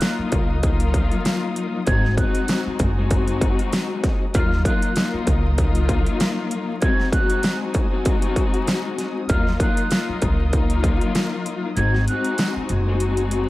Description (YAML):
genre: hip hop, boom-bap hip-hop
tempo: 97 BPM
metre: 4/4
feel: swing 56% on 16ths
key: Eb dorian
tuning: A4 = 440 Hz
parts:
  - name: breathy mellow silver concert flute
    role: melody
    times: 0.0-12.5 s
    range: F6 to Ab6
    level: -29 LUFS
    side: right 3 dB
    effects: high-pass filter, low-pass filter, analog delay
  - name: dark studio string section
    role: accompaniment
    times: 0.0-13.5 s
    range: Gb3 to Gb4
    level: -24 LUFS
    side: left 4 dB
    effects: cassette tape, high-pass filter, low-pass filter
  - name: warm studio string section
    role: sustained chords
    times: 0.0-13.5 s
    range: Eb4 to Eb6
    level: -36 LUFS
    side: right 1 dB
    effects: high-pass filter, low-pass filter
  - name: dubstep drum kit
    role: drums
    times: 0.0-13.5 s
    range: hi-hat, kick drum, snare drum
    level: -21 LUFS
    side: equal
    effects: distortion
  - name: tambourine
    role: percussion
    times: 0.0-12.5 s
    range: none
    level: -40 LUFS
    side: right 16 dB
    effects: none
  - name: upright bass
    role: bass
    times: 0.2-13.5 s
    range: Gb1 to Eb2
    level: -22 LUFS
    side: equal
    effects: none
room: small room ambience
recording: vinyl crackle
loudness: -18 LUFS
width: side -17 dB against mid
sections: 0.0-13.5 A section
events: kick muted 11.8-13.5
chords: 0.0 Ebmadd9; 1.9 Ab7; 4.3 Ebmadd9; 6.8 Ab7; 9.3 Ebmadd9; 11.8 Ab7